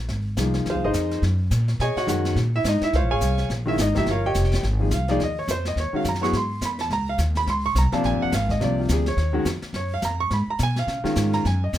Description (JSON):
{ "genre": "jazz piano trio", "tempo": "211 BPM", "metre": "4/4", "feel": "swing 59% on 8ths", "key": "Bb minor", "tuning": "A4 = 436 Hz", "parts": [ { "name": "upright bass", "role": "bass", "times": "0.0-11.8 s", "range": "F1 to Db3", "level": "-23 LUFS", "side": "equal", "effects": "none" }, { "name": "jazz brush drum kit", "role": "drums", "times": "0.1-11.8 s", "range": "brushed snare drum, hi-hat, kick drum, snare drum", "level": "-32 LUFS", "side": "left 1 dB", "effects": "none" }, { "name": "clear concert grand piano", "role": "melody", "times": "0.4-11.8 s", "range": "C3 to Db6", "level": "-24 LUFS", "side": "equal", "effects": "none" } ], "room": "light reverb", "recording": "close, detailed microphones", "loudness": "-20 LUFS", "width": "side -12 dB against mid", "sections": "0.0-4.6 A section; 4.6-11.8 A section", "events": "grand piano solo 0.0-11.8", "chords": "0.1 Fm7; 1.2 Gb; 1.8 B69; 2.4 Bbm9; 3.5 Bb7(no3); 4.1 Eb9; 4.6 Ab6; 5.8 Ebm7; 6.3 Abaug; 6.9 Dbmaj7sus2; 8.0 Bb7; 9.2 Ebm9; 10.3 Abm; 10.9 Dbadd9" }